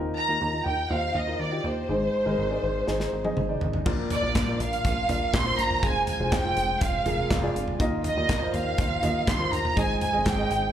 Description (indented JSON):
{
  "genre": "piano-driven pop",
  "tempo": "122 BPM",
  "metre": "4/4",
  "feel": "straight",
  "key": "Bb mixolydian",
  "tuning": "A4 = 440 Hz",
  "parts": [
    { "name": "dark baby grand piano", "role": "accompaniment", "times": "0.0-10.7 s", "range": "Ab2 to Eb5", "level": "-30 LUFS", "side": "left 1 dB", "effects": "slapback echo" },
    { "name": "plucky analog bass", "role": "bass", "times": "0.0-10.7 s", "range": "F1 to Eb2", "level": "-31 LUFS", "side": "equal", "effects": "none" },
    { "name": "warm studio violin section", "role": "melody", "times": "0.2-10.7 s", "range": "C5 to C6", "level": "-27 LUFS", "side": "right 2 dB", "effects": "slapback echo" },
    { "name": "modern studio drum kit", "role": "drums", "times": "2.9-10.6 s", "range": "crash cymbal, handclaps, hi-hat, kick drum, snare drum, toms", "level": "-28 LUFS", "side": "equal", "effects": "none" },
    { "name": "direct-recorded clean electric guitar", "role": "riff", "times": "3.9-10.7 s", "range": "F2 to Ab4", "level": "-35 LUFS", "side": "right 6 dB", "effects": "slapback echo" }
  ],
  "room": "light reverb, small room ambience",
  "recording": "live gig heard through the venue's PA, club ambience",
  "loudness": "-23 LUFS",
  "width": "side -10 dB against mid",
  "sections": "0.0-3.9 A section; 3.9-10.7 B section",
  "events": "drum fill 2.9-3.9",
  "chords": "0.0 Ebsus2; 1.9 Ab; 3.9 Bb; 5.8 Fm; 7.8 Ebsus2; 9.8 Ab"
}